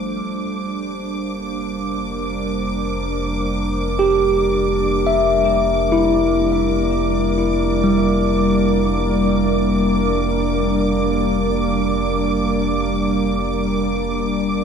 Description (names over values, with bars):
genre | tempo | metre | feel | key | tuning
ambient | free time | none | none | unclear | A4 = 440 Hz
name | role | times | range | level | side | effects
warbly tape-like pad | sustained chords | 0.0-14.6 s | F3 to D5 | -20 LUFS | equal | chorus, built-in reverb
bell-like tine electric piano | arpeggios | 0.0-14.6 s | G3 to E5 | -21 LUFS | equal | ping-pong delay
round analog bass | bass | 0.0-14.6 s | F1 | -26 LUFS | equal | none
warm studio violin section | texture | 0.0-14.6 s | D6 | -27 LUFS | right 2 dB | none
room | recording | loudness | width
wet concert hall reverb, RT60 2.2 s | cassette tape | -16 LUFS | side -6 dB against mid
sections
0.0-14.6 A section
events
none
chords
0.3 Gm/F